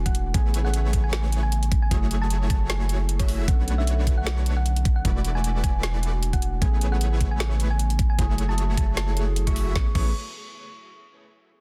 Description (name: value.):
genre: future bass.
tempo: 153 BPM.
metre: 4/4.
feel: swing 55% on 16ths, half-time.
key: A major.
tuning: A4 = 442 Hz.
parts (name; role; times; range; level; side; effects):
tine electric piano; accompaniment; 0.0-10.1 s; C#3 to C#5; -37 LUFS; equal; phaser, sidechain pumping, tape echo.
long sustained 808-style bass; bass; 0.0-10.1 s; E1 to B1; -26 LUFS; equal; sidechain pumping.
thumb-piano-like synth pluck; melody; 0.1-10.1 s; C#5 to C#6; -37 LUFS; equal; chorus, sidechain pumping, delay.
electronic kick drum; drums; 0.1-10.0 s; none; -26 LUFS; equal; none.
trap drum kit; drums; 0.1-10.0 s; crash cymbal, hi-hat, snare drum; -34 LUFS; equal; none.
dense compressed supersaw; riff; 0.3-10.1 s; A3 to E5; -37 LUFS; equal; sidechain pumping.
room: little or no reverb.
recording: dense, heavily limited modern master.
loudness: -23 LUFS.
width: mono.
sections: 0.0-9.8 A section; 9.8-11.3 B section.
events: drop 0.0-9.8.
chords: 0.3 Amaj9; 1.9 F#m9; 3.5 Bm9; 5.0 E9sus4; 6.6 Amaj9; 8.2 F#m9; 9.8 Amaj9.